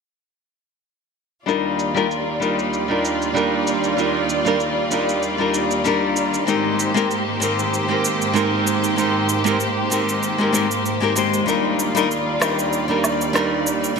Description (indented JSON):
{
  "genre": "sunset chillout",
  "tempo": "96 BPM",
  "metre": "4/4",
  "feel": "swing 55% on 16ths",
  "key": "Eb major",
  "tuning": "A4 = 438 Hz",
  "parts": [
    { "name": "nylon-string guitar", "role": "accompaniment", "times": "1.5-14.0 s", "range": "G3 to C5", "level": "-20 LUFS", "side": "moving between left 6 dB and right 6 dB", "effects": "auto-pan, low-pass filter, digital delay" },
    { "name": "rich studio string section", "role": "sustained chords", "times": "1.5-14.0 s", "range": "Eb2 to D5", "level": "-22 LUFS", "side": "equal", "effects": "none" },
    { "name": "electronic cabasa, rim click and woodblock", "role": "drums", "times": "1.5-13.9 s", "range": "none", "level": "-26 LUFS", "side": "right 1 dB", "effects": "low-pass filter on perc, studio reverb, low-pass filter on snare" }
  ],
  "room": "wet plate reverb, RT60 3.6 s",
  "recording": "bright 1980s-style digital production",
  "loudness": "-18 LUFS",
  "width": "side -5 dB against mid",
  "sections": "1.5-14.0 A section",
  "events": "filter sweep on drum 1.5-14.0",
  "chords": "1.5 Ebmaj9; 6.5 Abmaj9; 11.5 Ebmaj9"
}